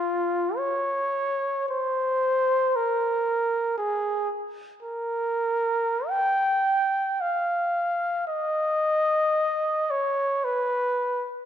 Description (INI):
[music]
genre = classical, free, expressive piece for unaccompanied trumpet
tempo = 44-59 BPM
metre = 3/4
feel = rubato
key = Bb dorian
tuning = A4 = 438 Hz
[part]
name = dark trumpet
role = solo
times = 0.0-11.3 s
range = F4 to G5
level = -23 LUFS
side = equal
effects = none
[sound]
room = moderate concert hall reverb, RT60 1.8 s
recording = none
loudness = -23 LUFS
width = side -10 dB against mid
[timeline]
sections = 0.0-11.5 A section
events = none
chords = none